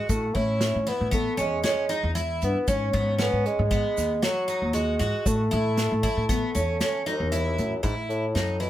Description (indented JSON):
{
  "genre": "progressive instrumental, band music in an uneven meter",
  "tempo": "116 BPM",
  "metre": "5/4",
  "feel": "straight",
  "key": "A lydian",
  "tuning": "A4 = 440 Hz",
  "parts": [
    { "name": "mellow bassoon", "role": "melody", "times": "0.0-8.7 s", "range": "D#2 to C#4", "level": "-27 LUFS", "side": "equal", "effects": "slapback echo" },
    { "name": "picked twelve-string acoustic guitar", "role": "arpeggios", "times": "0.0-8.7 s", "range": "B3 to F#4", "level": "-29 LUFS", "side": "right 1 dB", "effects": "none" },
    { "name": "upright bass", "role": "bass", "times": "0.1-8.7 s", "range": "D#2 to A2", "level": "-27 LUFS", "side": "equal", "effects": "none" },
    { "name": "unplugged drum kit", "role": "drums", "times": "0.1-8.7 s", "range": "hi-hat, kick drum, snare drum", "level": "-29 LUFS", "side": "equal", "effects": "none" },
    { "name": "tube shaker", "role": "percussion", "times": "0.1-6.9 s", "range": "none", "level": "-40 LUFS", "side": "right 7 dB", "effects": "none" }
  ],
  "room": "light reverb",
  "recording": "none",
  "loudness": "-23 LUFS",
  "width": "side -13 dB against mid",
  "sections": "0.0-7.8 A section",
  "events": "none",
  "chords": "0.1 Amaj7; 2.7 G#m7; 5.3 A; 7.8 A5"
}